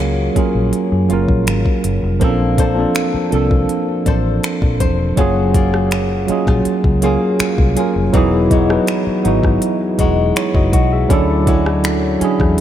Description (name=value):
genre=contemporary R&B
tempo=81 BPM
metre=4/4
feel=straight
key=unclear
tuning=A4 = 441 Hz
part: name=mellow tine electric piano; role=accompaniment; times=0.0-12.6 s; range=E#3 to E5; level=-17 LUFS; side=right 2 dB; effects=medium stereo tremolo
part: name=flamenco guitar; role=arpeggios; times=0.0-12.6 s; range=D3 to B#4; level=-21 LUFS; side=left 5 dB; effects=tape echo
part: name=vintage muted fingered electric bass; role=bass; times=0.0-12.6 s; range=E1 to F#2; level=-18 LUFS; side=equal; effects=none
part: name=smooth R&B drum kit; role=drums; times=0.0-12.6 s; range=finger snaps, hi-hat, kick drum, rim click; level=-18 LUFS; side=equal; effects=none
room=moderate cathedral reverb, RT60 4.8 s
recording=dreamy mix soaked in reverb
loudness=-13 LUFS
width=side -11 dB against mid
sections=0.0-2.2 A section; 2.2-12.6 B section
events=none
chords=0.0 F#maj9; 2.2 A#maj9; 5.2 F#maj9; 8.1 Emaj9; 11.1 Dmaj9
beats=0.73 1.47 | 2.21 2.95 3.69 4.43 | 5.17 5.92 6.66 7.40 | 8.14 8.88 9.62 10.36 | 11.10 11.84 12.58